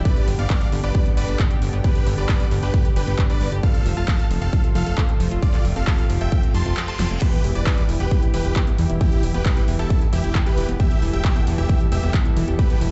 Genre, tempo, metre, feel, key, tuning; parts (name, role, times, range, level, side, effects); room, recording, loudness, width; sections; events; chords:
uplifting trance; 134 BPM; 4/4; straight; E phrygian; A4 = 440 Hz
lush unison pad; sustained chords; 0.0-12.9 s; B2 to A4; -33 LUFS; equal; chorus, sidechain pumping
fat analog bass; bass; 0.0-12.9 s; E1 to G1; -24 LUFS; equal; sidechain pumping
big supersaw lead; melody; 0.1-12.8 s; E4 to C6; -33 LUFS; equal; sidechain pumping, tape echo
analog pluck; arpeggios; 0.1-12.9 s; D3 to A4; -32 LUFS; equal; chorus, sidechain pumping, digital delay
big-room dance drum kit; drums; 0.1-12.9 s; crash cymbal, handclaps, hi-hat, snare drum; -34 LUFS; equal; overdrive, sidechain pumping on hats, sidechain pumping on cymbals
electronic kick drum; drums; 0.1-12.7 s; -21 LUFS; equal; overdrive
reverse cymbal; sound effects; 6.5-7.2 s; -38 LUFS; equal
little or no reverb; played on a big sound system in a bare room, large studio reverb, nothing above 8.0 kHz; -20 LUFS; mono
0.0-12.9 A section
reverse cymbal 6.5-7.2; break 6.8-7.2; drum fill 7.0
0.1 G; 3.6 F; 7.2 Em